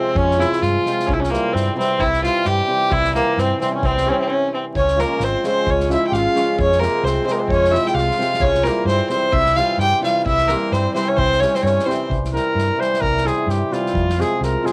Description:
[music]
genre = balkan folk, Balkan wedding band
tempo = 131 BPM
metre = 2/4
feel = swing 56% on 16ths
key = C phrygian dominant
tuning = A4 = 440 Hz
[part]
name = warm fiddle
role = melody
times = 0.0-12.1 s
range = Bb3 to G5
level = -21 LUFS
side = equal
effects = none
[part]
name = hammered dulcimer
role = accompaniment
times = 0.0-14.7 s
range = C3 to Db4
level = -25 LUFS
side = equal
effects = cassette tape
[part]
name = clear trumpet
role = second line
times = 0.2-14.7 s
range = Bb3 to C5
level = -28 LUFS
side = equal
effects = cassette tape
[part]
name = hollow-body short-scale fingered electric bass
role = bass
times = 0.2-14.5 s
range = Ab1 to G2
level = -25 LUFS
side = equal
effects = none
[part]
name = unplugged drum kit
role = percussion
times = 0.2-14.7 s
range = kick drum, snare drum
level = -30 LUFS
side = equal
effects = none
[sound]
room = moderate booth ambience, RT60 0.2 s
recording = home recording on cassette, vinyl crackle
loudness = -18 LUFS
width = mono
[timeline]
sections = 0.0-4.8 A section; 4.8-12.1 A section; 12.1-14.7 B section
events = stop 4.3-4.8; trumpet solo 12.1-14.7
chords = 0.0 Fm; 1.1 C; 4.8 Db; 6.6 Fm; 8.4 C; 13.9 Fm

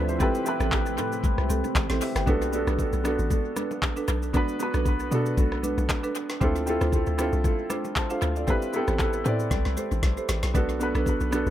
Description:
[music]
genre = amapiano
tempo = 116 BPM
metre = 4/4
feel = swing 55% on 16ths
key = B phrygian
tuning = A4 = 440 Hz
[part]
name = warm baby grand piano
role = accompaniment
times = 0.0-11.5 s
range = B3 to A5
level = -28 LUFS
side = equal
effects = tape echo
[part]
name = deep dark ambient pad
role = sustained chords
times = 0.0-2.3 s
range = D3 to E5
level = -35 LUFS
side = left 3 dB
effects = chorus, built-in reverb
[part]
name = hollow log drum bass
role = bass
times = 0.0-11.5 s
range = G1 to B2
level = -27 LUFS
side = equal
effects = none
[part]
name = smooth R&B drum kit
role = drums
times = 0.1-11.5 s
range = handclaps, hi-hat, kick drum, rim click, shaker, snare drum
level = -28 LUFS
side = equal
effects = tape echo
[part]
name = marimba with medium mallets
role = stabs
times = 0.2-11.4 s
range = C4 to C5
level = -32 LUFS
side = right 5 dB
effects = tape echo
[part]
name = congas and bongos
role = percussion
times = 0.2-11.5 s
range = none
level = -38 LUFS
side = left 5 dB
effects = tape echo
[sound]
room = light reverb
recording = echo-heavy mix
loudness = -23 LUFS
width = side -12 dB against mid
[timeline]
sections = 0.0-2.3 A section; 2.3-11.5 B section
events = drop 0.0-2.3; drum fill 9.5-10.5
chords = 0.2 Am7; 2.3 Bm7; 6.4 Dm7; 8.5 Am7; 10.5 Bm7

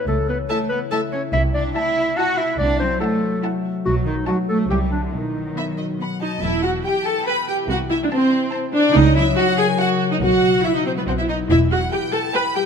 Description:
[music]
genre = cinematic, playful, whimsical film cue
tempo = 142 BPM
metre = 3/4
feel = straight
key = E minor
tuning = A4 = 439 Hz
[part]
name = warm clarinet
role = second line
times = 0.0-6.0 s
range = D4 to F#5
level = -24 LUFS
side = left 1 dB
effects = none
[part]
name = concert harp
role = arpeggios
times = 0.0-12.7 s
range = B2 to E5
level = -26 LUFS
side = left 6 dB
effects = none
[part]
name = rich studio cello section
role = bass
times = 0.1-11.8 s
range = E2 to F#4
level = -26 LUFS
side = right 2 dB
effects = none
[part]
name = rich studio double bass section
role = bass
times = 0.1-11.8 s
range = E1 to C#2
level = -22 LUFS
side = right 3 dB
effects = none
[part]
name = rich studio violin section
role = melody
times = 0.5-12.7 s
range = E5 to B5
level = -33 LUFS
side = left 3 dB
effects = none
[part]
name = rich studio violin section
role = second line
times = 0.5-12.6 s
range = B4 to B5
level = -26 LUFS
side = left 2 dB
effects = none
[part]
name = rich studio viola section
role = accompaniment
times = 0.5-12.6 s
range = B3 to B4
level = -20 LUFS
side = right 1 dB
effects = none
[part]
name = dark French horn section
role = sustained chords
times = 6.2-12.7 s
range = B3 to B4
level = -27 LUFS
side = left 4 dB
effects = none
[sound]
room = moderate scoring stage reverb, RT60 2.0 s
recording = none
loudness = -17 LUFS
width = side -6 dB against mid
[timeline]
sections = 0.0-6.4 A section; 6.4-12.7 B section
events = none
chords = 0.1 A/C#; 1.3 F#m7b5/C; 3.9 B7; 4.7 C; 5.1 B; 6.4 Em; 7.7 Am/C; 9.0 F#7/C#; 10.2 Bsus4; 11.5 Em

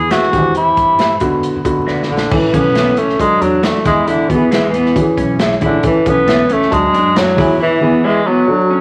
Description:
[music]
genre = uptempo 1960s-style soul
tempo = 136 BPM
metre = 4/4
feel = straight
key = E mixolydian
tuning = A4 = 440 Hz
[part]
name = breathy tenor saxophone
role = melody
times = 0.0-8.8 s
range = D3 to G#4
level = -16 LUFS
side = equal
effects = none
[part]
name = dark upright piano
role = accompaniment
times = 0.0-8.8 s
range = D3 to A5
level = -20 LUFS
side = equal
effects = none
[part]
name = upright bass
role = bass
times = 0.0-7.6 s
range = A1 to G2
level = -28 LUFS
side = equal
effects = none
[part]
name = electric guitar through a small old amp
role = stabs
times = 0.1-8.2 s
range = C#4 to E5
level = -23 LUFS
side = equal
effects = none
[part]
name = swinging big-band drum kit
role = drums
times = 0.1-7.5 s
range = crash cymbal, hi-hat, kick drum, snare drum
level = -23 LUFS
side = equal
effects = none
[part]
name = electric guitar through a small old amp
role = riff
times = 2.5-8.8 s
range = G#3 to E4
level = -20 LUFS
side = equal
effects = none
[sound]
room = moderate large studio reverb, RT60 0.9 s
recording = vinyl crackle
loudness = -13 LUFS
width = mono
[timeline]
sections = 0.0-2.3 A section; 2.3-8.8 B section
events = drum fill 1.9-2.3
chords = 0.3 C/E; 1.2 Bm; 2.3 A; 3.2 D; 3.9 E; 5.0 C#m; 5.8 A; 6.7 D; 7.4 E

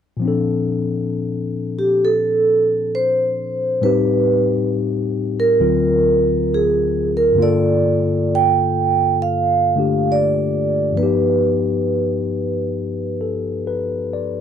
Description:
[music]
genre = jazz ballad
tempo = 67 BPM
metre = 4/4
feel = swing 67% on 8ths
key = Bb major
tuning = A4 = 439 Hz
[part]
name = barky tine electric piano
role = accompaniment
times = 0.2-14.4 s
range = D2 to D5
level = -19 LUFS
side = left 4 dB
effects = none
[part]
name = vibraphone with medium mallets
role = melody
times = 1.8-13.6 s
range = G4 to G5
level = -18 LUFS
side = right 4 dB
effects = none
[sound]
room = little or no reverb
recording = dry, close 1970s-style studio recording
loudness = -16 LUFS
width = side -8 dB against mid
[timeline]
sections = 0.2-14.4 A section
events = none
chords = 0.2 Bbmaj7; 3.8 Am7b5; 5.6 D7alt; 7.4 Gm9; 11.0 G7b13

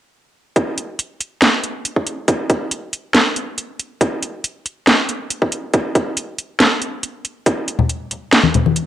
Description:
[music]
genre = deep dubstep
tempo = 139 BPM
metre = 4/4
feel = half-time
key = none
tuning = none
[part]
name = electronic kick drum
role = drums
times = 0.6-7.6 s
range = none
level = -18 LUFS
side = equal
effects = high-pass filter on kick, cassette tape, high-pass filter on room
[part]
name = garage drum kit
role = drums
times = 0.6-8.9 s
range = hi-hat, snare drum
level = -15 LUFS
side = right 1 dB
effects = cassette tape
[part]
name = congas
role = percussion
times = 7.8-8.7 s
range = none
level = -15 LUFS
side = left 4 dB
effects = none
[sound]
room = moderate digital room reverb, RT60 1.1 s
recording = home recording on cassette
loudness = -16 LUFS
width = side -12 dB against mid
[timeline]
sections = 0.6-8.9 A section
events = none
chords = none

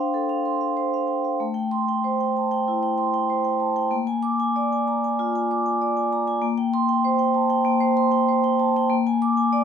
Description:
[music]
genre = classical, contemporary piece for solo vibraphone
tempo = 96 BPM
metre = 4/4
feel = rubato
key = unclear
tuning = A4 = 440 Hz
[part]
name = vibraphone with medium hard mallets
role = solo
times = 0.0-9.6 s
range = A3 to D6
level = -20 LUFS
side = equal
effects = none
[sound]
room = light reverb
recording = close, detailed microphones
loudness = -20 LUFS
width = side -7 dB against mid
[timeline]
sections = 0.0-9.6 A section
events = none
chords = 0.0 Dm7; 1.4 Am7; 3.9 Bb7; 6.4 Am7/Bb; 8.9 Bb7

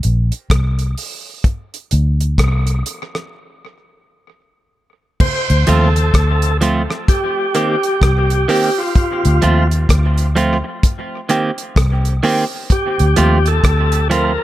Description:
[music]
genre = dub reggae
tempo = 64 BPM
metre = 4/4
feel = swing 61% on 16ths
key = D phrygian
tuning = A4 = 438 Hz
[part]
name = vintage muted fingered electric bass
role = bass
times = 0.0-14.4 s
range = Bb1 to Eb2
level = -14 LUFS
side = equal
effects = none
[part]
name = damped 70s drum kit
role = drums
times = 0.0-14.4 s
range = crash cymbal, hi-hat, kick drum, rim click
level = -18 LUFS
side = equal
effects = none
[part]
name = overdriven tonewheel organ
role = melody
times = 5.2-14.4 s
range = F4 to C5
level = -18 LUFS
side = equal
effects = fast rotary speaker, tape echo
[part]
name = congas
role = percussion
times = 5.2-5.5 s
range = none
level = -28 LUFS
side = right 3 dB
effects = none
[part]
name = clean electric guitar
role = accompaniment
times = 5.7-14.4 s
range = Eb3 to G4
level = -19 LUFS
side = right 2 dB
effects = tape echo
[sound]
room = light reverb, small room ambience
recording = echo-heavy mix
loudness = -13 LUFS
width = side -14 dB against mid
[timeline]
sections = 0.0-5.2 A section; 5.2-14.4 B section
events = break 0.0-5.2; part muted 5.2-14.4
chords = 0.0 Bbsus2; 1.4 Csus2; 3.3 N.C.; 5.2 Dm7; 7.1 Cm7; 9.0 Dm7; 10.8 Cm7; 12.7 Dm7

